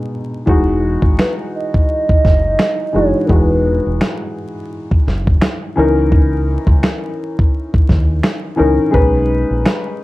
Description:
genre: lo-fi hip hop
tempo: 85 BPM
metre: 4/4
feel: swing 57% on 16ths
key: unclear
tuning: A4 = 438 Hz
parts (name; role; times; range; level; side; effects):
- felt-muted upright piano; accompaniment; 0.0-10.0 s; B2 to B4; -18 LUFS; left 2 dB; cassette tape, low-pass filter, plate reverb
- deep dub fingered electric bass; bass; 0.5-9.6 s; E1 to D#2; -18 LUFS; equal; none
- dusty soul sampler-style drum kit; drums; 0.5-9.8 s; finger snaps, kick drum, snare drum; -14 LUFS; equal; none
- hollow clarinet-like synth lead; melody; 1.2-4.0 s; A#4 to D#5; -18 LUFS; right 2 dB; chorus, low-pass filter, plate reverb
room: light reverb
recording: vinyl crackle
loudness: -12 LUFS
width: side -18 dB against mid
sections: 0.5-10.0 A section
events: hi-hats muted 0.5-10.0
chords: 0.5 Emaj9; 5.8 C#m69; 8.9 B69

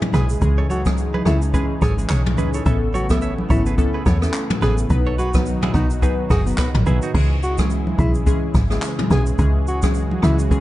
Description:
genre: afrobeats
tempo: 107 BPM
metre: 4/4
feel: swing 58% on 16ths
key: C# minor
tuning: A4 = 441 Hz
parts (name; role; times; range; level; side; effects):
- warm analog pad; sustained chords; 0.0-10.6 s; B2 to G#4; -28 LUFS; equal; chorus
- jazz brush drum kit; drums; 0.0-10.6 s; crash cymbal, handclaps, hi-hat, kick drum, rim click, shaker, toms; -21 LUFS; equal; none
- congas; percussion; 0.0-10.4 s; none; -27 LUFS; right 1 dB; none
- breathy alto saxophone; melody; 0.1-10.4 s; D#4 to G#4; -28 LUFS; equal; tape echo
- glassy digital keys; accompaniment; 0.1-10.6 s; E3 to B4; -26 LUFS; left 1 dB; chorus
- direct-recorded clean electric guitar; riff; 0.1-7.1 s; D#4 to E5; -31 LUFS; right 5 dB; spring reverb, tape echo
- woody log drum bass; bass; 0.1-10.6 s; F#1 to E2; -20 LUFS; equal; none
room: small room ambience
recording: dark, warm production, nothing above 10.7 kHz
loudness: -16 LUFS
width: side -16 dB against mid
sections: 0.0-7.1 A section; 7.1-10.6 B section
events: none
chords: 0.0 C#m; 2.7 Aadd9; 4.9 B; 7.1 C#m

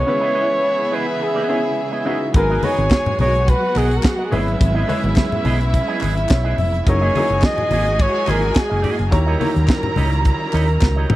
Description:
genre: disco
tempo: 106 BPM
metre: 4/4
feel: straight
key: G# minor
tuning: A4 = 440 Hz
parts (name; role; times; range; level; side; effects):
- mellow flugelhorn; melody; 0.0-9.0 s; F#4 to D#5; -20 LUFS; equal; none
- warm studio violin section; second line; 0.0-11.2 s; B3 to A#5; -25 LUFS; right 1 dB; none
- clear baby grand piano; accompaniment; 0.0-11.2 s; C#3 to E5; -27 LUFS; left 1 dB; none
- clear studio string section; sustained chords; 0.0-11.2 s; C#3 to D#5; -26 LUFS; equal; none
- electric guitar with an envelope filter; accompaniment; 0.1-11.2 s; A#3 to D#5; -27 LUFS; right 4 dB; none
- hollow-body short-scale fingered electric bass; bass; 2.3-11.2 s; E#1 to D#2; -19 LUFS; equal; none
- tight funk drum kit; drums; 2.3-11.2 s; hi-hat, kick drum, snare drum, toms; -15 LUFS; equal; none
- congas; percussion; 2.3-11.2 s; none; -26 LUFS; left 3 dB; none
- group handclap; percussion; 2.9-11.0 s; none; -34 LUFS; left 10 dB; none
room: small room ambience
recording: dry, close 1970s-style studio recording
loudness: -15 LUFS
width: side -16 dB against mid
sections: 0.0-2.3 A section; 2.3-11.2 B section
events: break 0.1-2.3; grand piano fill 6.0-6.9; drum fill 10.8-11.2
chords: 0.1 C#m9; 2.3 G#m9; 4.3 C#m9/G#; 6.9 F#13; 9.1 D#7b9

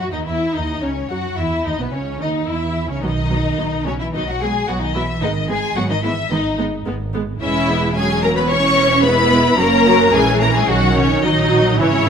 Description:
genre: quick classical-period movement for string orchestra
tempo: 109 BPM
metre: 4/4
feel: rubato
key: B major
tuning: A4 = 440 Hz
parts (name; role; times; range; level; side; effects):
- rich symphonic violin section; melody; 0.0-12.1 s; B4 to C#6; -22 LUFS; left 4 dB; none
- warm symphonic violin section; second line; 0.0-12.1 s; B3 to C#5; -20 LUFS; left 2 dB; none
- warm symphonic viola section; accompaniment; 0.0-12.1 s; D#3 to F#4; -21 LUFS; right 1 dB; none
- warm symphonic cello section; bass; 0.0-12.1 s; B2 to C#4; -22 LUFS; right 3 dB; none
- warm symphonic double bass section; bass; 0.0-12.1 s; E1 to F#2; -23 LUFS; right 3 dB; none
room: moderate scoring stage reverb, RT60 1.7 s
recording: close, detailed microphones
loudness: -15 LUFS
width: side -7 dB against mid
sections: 0.0-12.1 A section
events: none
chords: 0.0 B; 5.2 G#m; 7.4 C#m/E; 9.6 F#7; 10.7 B

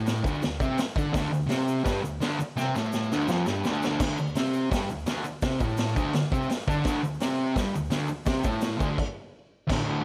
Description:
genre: garage rock duo or trio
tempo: 168 BPM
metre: 4/4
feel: straight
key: unclear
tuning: A4 = 441 Hz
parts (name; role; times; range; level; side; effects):
- fuzz guitar; riff; 0.0-10.0 s; D2 to D4; -29 LUFS; equal; distortion
- vintage drum kit; drums; 0.1-9.8 s; crash cymbal, hi-hat, kick drum, snare drum; -32 LUFS; equal; none
- egg shaker; percussion; 0.1-8.9 s; none; -52 LUFS; equal; none
room: light reverb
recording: none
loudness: -27 LUFS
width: mono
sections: 0.0-4.0 A section; 4.0-9.7 B section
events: drum fill 2.6-4.0; stop 9.0-9.7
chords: 0.0 D5

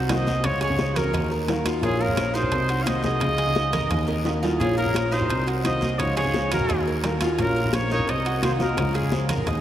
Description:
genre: latin, Cuban son and guajira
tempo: 173 BPM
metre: 4/4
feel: straight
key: unclear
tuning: A4 = 440 Hz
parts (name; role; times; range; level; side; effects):
- Cuban tres; arpeggios; 0.0-9.6 s; Eb4 to Eb5; -29 LUFS; right 2 dB; tape echo
- dark grand piano; bass; 0.0-9.6 s; Bb1 to Eb2; -26 LUFS; equal; none
- breathy trumpet; melody; 0.1-9.3 s; Ab4 to F5; -27 LUFS; right 1 dB; tape echo
- nylon-string guitar; second line; 0.1-9.3 s; F4 to Db5; -32 LUFS; left 1 dB; none
- fingerpicked steel-string acoustic guitar; accompaniment; 0.1-9.5 s; C3 to Gb4; -30 LUFS; left 2 dB; lush chorus
- bongos; percussion; 0.1-9.6 s; none; -35 LUFS; left 5 dB; none
- congas; percussion; 0.1-9.6 s; none; -33 LUFS; equal; none
- guiro; percussion; 0.1-9.6 s; none; -40 LUFS; left 2 dB; none
- timbales; percussion; 0.1-9.6 s; none; -34 LUFS; right 4 dB; none
room: wet lush hall reverb, RT60 2.7 s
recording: dreamy mix soaked in reverb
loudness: -21 LUFS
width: side -11 dB against mid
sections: 0.0-9.6 A section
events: drum fill 4.1-4.6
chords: 0.4 Dbadd9; 1.1 Ebm; 1.8 Bbm; 2.5 Cm7b5; 3.2 Dbadd9; 3.9 Ebm; 4.6 Bbm; 5.3 Cm7b5; 6.0 Dbadd9; 6.7 Ebm; 7.4 Bbm; 8.1 Cm7b5; 8.8 Dbadd9

